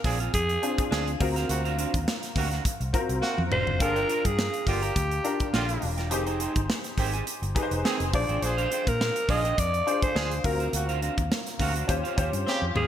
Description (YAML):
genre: polished 1980s jazz-funk pop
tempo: 104 BPM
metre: 4/4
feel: swing 54% on 16ths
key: unclear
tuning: A4 = 439 Hz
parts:
  - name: warm horn section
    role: second line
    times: 0.0-12.6 s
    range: C3 to Ab4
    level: -34 LUFS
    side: right 2 dB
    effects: none
  - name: clear concert grand piano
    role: accompaniment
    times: 0.0-12.9 s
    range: C4 to G5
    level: -32 LUFS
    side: left 3 dB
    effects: ensemble chorus
  - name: electric guitar at the edge of break-up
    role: riff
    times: 0.0-12.9 s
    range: C4 to Bb5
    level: -35 LUFS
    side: right 7 dB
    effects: lush chorus
  - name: vintage muted fingered electric bass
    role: bass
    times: 0.0-12.9 s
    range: E1 to Bb2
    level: -30 LUFS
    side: equal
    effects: none
  - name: modern studio drum kit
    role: drums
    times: 0.0-12.9 s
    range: hi-hat, kick drum, snare drum, toms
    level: -29 LUFS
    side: equal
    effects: none
  - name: breathy alto saxophone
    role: melody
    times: 0.3-12.9 s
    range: G4 to Eb5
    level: -29 LUFS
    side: equal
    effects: ping-pong delay
room: moderate plate reverb, RT60 1.8 s, small room ambience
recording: bright 1980s-style digital production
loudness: -24 LUFS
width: side -10 dB against mid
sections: 0.0-12.9 A section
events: drum fill 3.2-3.8, 12.5-12.9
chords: 0.0 Bb9; 1.2 D7alt; 3.8 Gm7; 6.1 Fm9; 8.1 Bb9; 10.4 D7alt; 11.9 Eb13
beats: 0.34 0.91 | 1.49 2.07 2.65 3.23 | 3.80 4.38 4.96 5.54 | 6.11 6.69 7.27 7.85 | 8.42 9.00 9.58 10.15 | 10.73 11.31 11.89 12.46